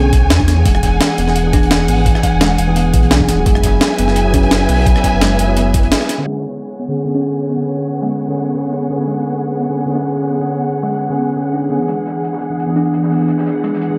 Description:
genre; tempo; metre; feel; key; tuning
liquid drum and bass; 171 BPM; 4/4; straight; B dorian; A4 = 440 Hz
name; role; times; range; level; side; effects
mellow tine electric piano; accompaniment; 0.0-14.0 s; D3 to G#4; -21 LUFS; equal; lush chorus, diffuse ambient delay
dark symphonic string section; sustained chords; 0.0-14.0 s; E3 to G#5; -23 LUFS; equal; sidechain pumping
kalimba; arpeggios; 0.0-13.8 s; G#3 to G#4; -24 LUFS; equal; low-pass filter, diffuse ambient delay
sub bass with octave; bass; 0.0-5.9 s; D1 to E2; -18 LUFS; equal; none
breakbeat sampler-style drum kit; drums; 0.1-6.2 s; hi-hat, rim click, snare drum; -20 LUFS; equal; studio reverb
crunchy breakbeat drum kit; drums; 0.1-6.2, 11.9-13.9 s; hi-hat, snare drum; -30 LUFS; equal; high-pass filter on hats, studio reverb, high-pass filter on snare, high-pass filter on room
electronic kick drum; drums; 0.1-5.8 s; none; -17 LUFS; equal; studio reverb
room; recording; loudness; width
moderate church reverb, RT60 2.8 s; dreamy mix soaked in reverb, low-pass filter; -15 LUFS; mono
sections
0.0-6.3 A section; 6.3-14.0 B section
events
drop 0.0-6.3; break 5.9-6.3; band accent 5.9; filter sweep 6.3-14.0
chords
0.0 F#9sus4 (rootless); 0.7 E7; 3.5 F#9sus4; 6.3 Bm69; 11.9 E7

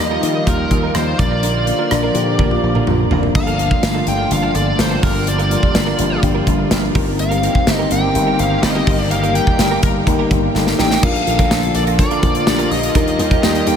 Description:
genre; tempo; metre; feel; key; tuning
1980s-style pop; 125 BPM; 4/4; straight; unclear; A4 = 440 Hz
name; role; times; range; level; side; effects
biting lead guitar; melody; 0.0-13.8 s; Bb4 to G5; -21 LUFS; equal; overdrive, analog delay
FM electric piano with soft pad layer; accompaniment; 0.0-13.8 s; F3 to Bb5; -22 LUFS; left 5 dB; chorus, tremolo
sweeping resonant pad; sustained chords; 0.0-13.8 s; D3 to G4; -23 LUFS; right 1 dB; chorus
direct-recorded clean electric guitar; riff; 0.0-13.7 s; F3 to Bb4; -27 LUFS; right 6 dB; ensemble chorus, analog delay
slap bass with an envelope filter; bass; 0.0-13.8 s; F1 to Eb3; -20 LUFS; equal; none
modern studio drum kit; drums; 0.2-13.8 s; crash cymbal, hi-hat, kick drum, rim click, snare drum, tambourine, toms; -18 LUFS; equal; none
warm horn section; stabs; 9.1-13.8 s; Eb3 to Bb4; -30 LUFS; left 3 dB; none
room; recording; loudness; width
moderate huge ambient reverb, RT60 8.1 s; dreamy mix soaked in reverb; -13 LUFS; side -8 dB against mid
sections
0.0-3.4 A section; 3.4-11.0 B section; 11.0-13.8 C section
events
drum fill 2.4-3.4, 10.6-11.0; FM electric piano fill 2.6-3.4; band accent 9.1-11.0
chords
0.0 Ebadd9; 1.2 Bb; 3.4 Bbmaj7/G; 5.0 Gm7; 7.0 Cm7/G; 8.9 Eb/G; 11.0 Bb; 13.0 Ebadd9

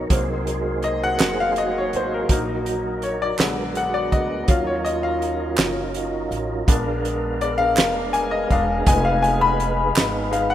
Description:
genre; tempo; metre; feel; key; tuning
slow gospel; 55 BPM (dotted quarters); 6/8; straight; Eb minor; A4 = 440 Hz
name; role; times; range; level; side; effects
bright upright piano; accompaniment; 0.0-10.5 s; D3 to Cb6; -22 LUFS; left 3 dB; none
dark French horn section; sustained chords; 0.0-10.5 s; D3 to Bb4; -29 LUFS; equal; none
tonewheel organ; sustained chords; 0.0-10.5 s; D3 to F5; -28 LUFS; right 3 dB; slow rotary speaker, chorus vibrato
upright bass; bass; 0.0-10.5 s; Fb1 to Eb2; -28 LUFS; right 1 dB; none
warm soul drum kit; drums; 0.1-10.5 s; hi-hat, kick drum, snare drum; -21 LUFS; right 1 dB; none
group handclap; percussion; 1.2-10.3 s; none; -28 LUFS; right 4 dB; none
room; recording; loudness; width
moderate lush hall reverb, RT60 2.7 s; rough home demo mix; -19 LUFS; side -11 dB against mid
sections
0.0-10.5 A section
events
upright piano solo 0.0-10.5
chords
0.1 Ab9/C; 2.3 Ebm/Bb; 3.4 Bb7b9b13; 4.5 Ebm9; 6.7 Bb7b9; 8.9 Fm7b5

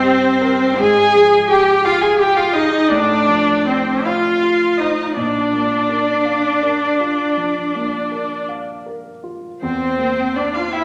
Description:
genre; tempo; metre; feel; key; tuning
classical, slow romantic movement for piano quartet; 50-58 BPM (dotted quarters); 12/8; rubato; unclear; A4 = 440 Hz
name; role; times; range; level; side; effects
warm violin; melody; 0.0-10.8 s; C5 to Ab5; -24 LUFS; equal; none
rich cello; second line; 0.0-10.8 s; C4 to Ab4; -23 LUFS; equal; none
dark grand piano; accompaniment; 0.0-10.8 s; E2 to G5; -27 LUFS; equal; none
rich viola; accompaniment; 0.0-10.8 s; C4 to Ab4; -19 LUFS; equal; none
room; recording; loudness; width
wet recital hall reverb, RT60 1.6 s; none; -16 LUFS; mono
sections
0.0-10.8 A section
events
none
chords
0.0 Cm7; 0.8 Fm/Ab; 2.9 F/A; 5.2 Bb; 9.6 C7/E

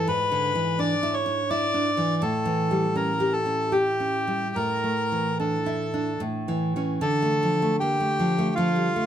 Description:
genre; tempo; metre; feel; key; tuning
romantic duo for bandoneon and classical guitar; 70-86 BPM; 3/4; rubato; D minor; A4 = 439 Hz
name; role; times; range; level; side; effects
bandoneon; melody; 0.0-9.1 s; F4 to D5; -25 LUFS; left 1 dB; none
nylon-string guitar; accompaniment; 0.0-9.1 s; G#2 to G4; -25 LUFS; right 1 dB; none
room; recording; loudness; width
moderate recital hall reverb, RT60 1.3 s; close, detailed microphones; -22 LUFS; side -10 dB against mid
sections
0.0-7.0 A section; 7.0-9.1 B section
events
none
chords
0.1 E7/G#; 2.2 A7; 4.6 Asus4; 6.2 A; 7.0 Dm

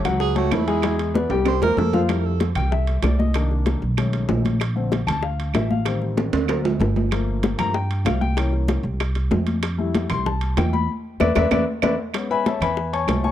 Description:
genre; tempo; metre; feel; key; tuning
Afro-Cuban jazz; 191 BPM; 4/4; straight; F major; A4 = 438 Hz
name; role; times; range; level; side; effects
warm baby grand piano; accompaniment; 0.0-13.3 s; D3 to C#6; -24 LUFS; left 5 dB; none
upright bass; bass; 0.0-13.3 s; G1 to G2; -23 LUFS; right 1 dB; none
claves; percussion; 0.0-13.2 s; none; -32 LUFS; right 15 dB; none
congas; percussion; 0.0-13.3 s; none; -26 LUFS; left 2 dB; none
timbales; percussion; 0.1-13.2 s; none; -28 LUFS; right 7 dB; none
breathy tenor saxophone; second line; 0.2-2.0 s; E4 to C5; -26 LUFS; right 9 dB; tape echo
bongos; percussion; 0.2-13.2 s; none; -28 LUFS; left 7 dB; none
room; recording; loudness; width
studio ambience; dry, close 1970s-style studio recording; -19 LUFS; side -11 dB against mid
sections
0.0-2.1 A section; 2.1-12.1 A section; 12.1-13.3 A section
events
tenor saxophone solo 0.0-2.1; drum fill 1.3-2.1, 6.2-7.1, 11.2-12.1; grand piano solo 2.1-13.3; band accent 10.9-12.1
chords
0.0 F#m7; 0.8 E7; 1.5 C7; 2.1 Fmaj9; 3.3 Cm9; 4.0 B13; 4.6 Bbmaj7; 5.9 Am7b5; 6.5 D7b13; 7.1 Gm9; 8.4 C7b9; 9.6 Fmaj9; 10.9 E5; 12.1 Amaj9

